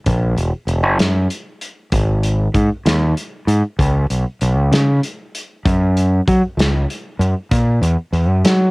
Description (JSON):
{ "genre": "math rock and midwest emo", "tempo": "64 BPM (dotted quarters)", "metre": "6/8", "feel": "straight", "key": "unclear", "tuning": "A4 = 443 Hz", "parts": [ { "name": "growling fingered electric bass", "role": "bass", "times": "0.1-8.7 s", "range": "E1 to F#3", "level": "-14 LUFS", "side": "equal", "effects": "overdrive" }, { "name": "loose indie drum kit", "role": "drums", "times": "0.1-8.6 s", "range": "hi-hat, kick drum, snare drum", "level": "-20 LUFS", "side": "equal", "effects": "cassette tape" } ], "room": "little or no reverb", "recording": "home recording on cassette", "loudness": "-14 LUFS", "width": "side -29 dB against mid", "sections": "0.0-8.7 A section", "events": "none", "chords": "none" }